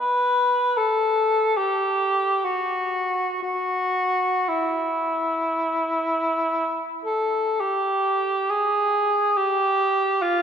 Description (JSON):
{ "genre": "classical, free, expressive piece for unaccompanied cor anglais", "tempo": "free time", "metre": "none", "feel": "none", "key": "E minor", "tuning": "A4 = 438 Hz", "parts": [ { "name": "mellow cor anglais", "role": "solo", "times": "0.0-10.4 s", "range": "E4 to B4", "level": "-20 LUFS", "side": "equal", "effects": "none" } ], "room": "wet church reverb, RT60 3.0 s", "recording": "nothing above 10.6 kHz", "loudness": "-20 LUFS", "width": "side -8 dB against mid", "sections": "0.0-7.6 A section; 7.6-10.4 B section", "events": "none", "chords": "none", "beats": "free time" }